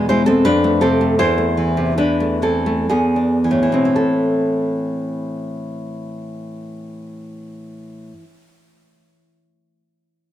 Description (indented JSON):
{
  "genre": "romantic piece for solo classical guitar",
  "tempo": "53-84 BPM",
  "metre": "3/4",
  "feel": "rubato",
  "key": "A minor",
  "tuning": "A4 = 440 Hz",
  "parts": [
    { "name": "nylon-string guitar", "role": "solo", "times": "0.0-8.6 s", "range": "E2 to C5", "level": "-16 LUFS", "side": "equal", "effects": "none" }
  ],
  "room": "light reverb",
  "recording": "none",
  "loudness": "-15 LUFS",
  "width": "side -12 dB against mid",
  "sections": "0.0-4.0 A section; 4.0-10.0 B section",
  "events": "slowing down 0.0-4.0",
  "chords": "0.5 F; 1.2 Am/E; 2.9 E7; 4.0 Am"
}